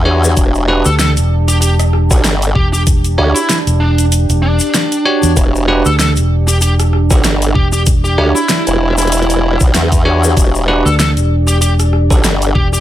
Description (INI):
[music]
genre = glitch hop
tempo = 96 BPM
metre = 4/4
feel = swing 56% on 16ths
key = E dorian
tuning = A4 = 442 Hz
[part]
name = formant-sweep wobble bass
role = bass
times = 0.0-12.5 s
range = E1 to E2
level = -13 LUFS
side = equal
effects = chorus, overdrive
[part]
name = warbly tape-like pad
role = texture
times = 0.0-12.8 s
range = D4 to A5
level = -21 LUFS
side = right 4 dB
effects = chorus, built-in reverb, sidechain pumping
[part]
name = bell-like tine electric piano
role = stabs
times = 0.1-12.3 s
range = D4 to C#5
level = -16 LUFS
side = moving between left 3 dB and right 6 dB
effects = auto-pan, sidechain pumping, digital delay
[part]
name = tube shaker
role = percussion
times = 0.2-12.8 s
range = none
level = -22 LUFS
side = left 5 dB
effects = none
[part]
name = electronic kick drum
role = drums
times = 0.4-12.7 s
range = none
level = -13 LUFS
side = equal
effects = overdrive
[part]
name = pop drum kit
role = drums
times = 0.4-12.5 s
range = hi-hat, rim click, snare drum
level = -17 LUFS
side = equal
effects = overdrive
[part]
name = smooth overdriven lead guitar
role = melody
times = 0.9-12.8 s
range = D4 to A4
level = -19 LUFS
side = equal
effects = digital delay
[part]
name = fingered electric bass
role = bass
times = 0.9-12.8 s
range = E1 to E2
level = -12 LUFS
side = equal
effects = none
[sound]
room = little or no reverb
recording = none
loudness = -10 LUFS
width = side -13 dB against mid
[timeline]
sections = 0.0-12.8 A section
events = kick drops out 4.1-5.4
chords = 0.0 Em7